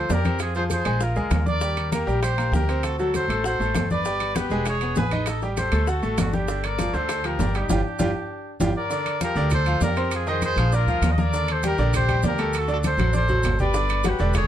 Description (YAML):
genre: latin, salsa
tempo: 198 BPM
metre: 4/4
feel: straight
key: G minor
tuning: A4 = 440 Hz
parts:
  - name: clear trumpet section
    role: melody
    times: 0.0-14.5 s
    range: D4 to Eb5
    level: -26 LUFS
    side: left 1 dB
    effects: none
  - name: bright baby grand piano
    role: accompaniment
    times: 0.0-14.4 s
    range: D3 to D6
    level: -27 LUFS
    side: right 1 dB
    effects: none
  - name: upright bass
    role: bass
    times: 0.0-14.5 s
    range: E1 to F2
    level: -25 LUFS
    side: equal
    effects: none
  - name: bongos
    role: percussion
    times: 0.1-8.7, 13.7-14.5 s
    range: none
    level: -35 LUFS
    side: left 6 dB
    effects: none
  - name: congas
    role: percussion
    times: 0.1-14.5 s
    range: none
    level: -28 LUFS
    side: left 2 dB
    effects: none
  - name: maracas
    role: percussion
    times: 0.1-14.5 s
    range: none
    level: -40 LUFS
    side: right 3 dB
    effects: none
  - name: timbales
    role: percussion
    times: 0.1-14.5 s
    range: none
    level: -32 LUFS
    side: right 6 dB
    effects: none
room: light reverb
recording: dark, warm production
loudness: -20 LUFS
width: side -11 dB against mid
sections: 0.0-8.9 A section; 8.9-14.5 A section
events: drum fill 7.7-8.9, 12.8-13.7; band accent 7.7-8.9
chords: 0.4 Fm; 1.0 Bb7; 1.6 Ebmaj7; 2.8 D7; 4.1 G; 4.7 E; 5.3 Am7b5; 5.9 D; 6.5 Gm7; 8.9 Gm9; 10.1 Fm7; 10.7 Bb; 11.3 Ebmaj7; 12.5 D7; 13.7 Gmaj7